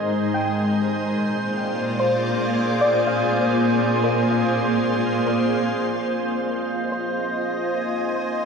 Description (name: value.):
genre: ambient.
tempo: 73 BPM.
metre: 3/4.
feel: straight.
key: F dorian.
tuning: A4 = 442 Hz.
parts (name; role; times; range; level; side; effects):
soft additive organ-like pad; sustained chords; 0.0-8.5 s; Ab3 to Ab5; -21 LUFS; equal; ensemble chorus, built-in reverb.
soft round pluck; arpeggios; 0.0-8.5 s; Bb4 to G5; -27 LUFS; left 1 dB; wide subtle chorus, tape echo.
rich symphonic cello section; bass; 0.0-6.1 s; Ab2 to Bb2; -28 LUFS; equal; none.
drifting glass-harmonics texture; texture; 0.0-8.5 s; Ab4 to Eb5; -32 LUFS; right 1 dB; chorus, built-in reverb.
room: wet spring reverb, RT60 2.6 s.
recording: echo-heavy mix.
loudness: -19 LUFS.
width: side -5 dB against mid.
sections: 0.0-6.1 A section; 6.1-8.5 B section.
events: fade-in on cello section 0.0-6.1; fade-in on synth texture 0.0-6.1.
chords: 0.0 Abmaj7; 1.2 Bb13; 6.1 Fm7.